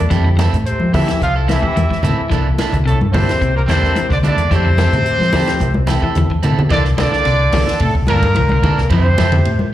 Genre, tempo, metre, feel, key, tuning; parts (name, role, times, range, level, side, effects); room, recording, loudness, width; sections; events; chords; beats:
afrobeat; 109 BPM; 4/4; straight; C mixolydian; A4 = 439 Hz
warm trumpet; melody; 0.0-9.7 s; A4 to F5; -19 LUFS; equal; slapback echo
bright trombone section; second line; 0.0-9.7 s; A2 to F3; -26 LUFS; left 2 dB; slapback echo, tape echo
clear trumpet; second line; 0.0-9.7 s; A3 to D5; -29 LUFS; right 2 dB; slapback echo
fingered electric bass; bass; 0.0-9.6 s; C2 to F3; -16 LUFS; equal
overdriven tine electric piano; accompaniment; 0.1-9.5 s; A3 to A5; -28 LUFS; left 3 dB; slapback echo
clean electric guitar; arpeggios; 0.1-9.3 s; C3 to F3; -23 LUFS; left 5 dB; slapback echo, tape echo
electric guitar at the edge of break-up; stabs; 0.1-9.4 s; E3 to A4; -24 LUFS; right 7 dB; slapback echo
compact cocktail drum kit; drums; 0.1-9.6 s; hi-hat, kick drum, ride cymbal, snare drum; -22 LUFS; equal
congas; percussion; 0.4-9.7 s; -20 LUFS; left 1 dB; slapback echo
little or no reverb; live gig heard through the venue's PA, club reverb; -12 LUFS; side -13 dB against mid
0.0-6.7 A section; 6.7-9.7 B section
tine electric piano fill 5.1-6.7; drum fill 5.6-6.7
0.1 Fmaj7; 2.3 C13; 4.5 Fmaj7; 6.7 C13; 8.9 Fmaj7
| 0.11 0.66 1.21 1.76 | 2.31 2.86 3.41 3.96 | 4.51 5.06 5.61 6.16 | 6.71 7.26 7.81 8.36 | 8.91 9.46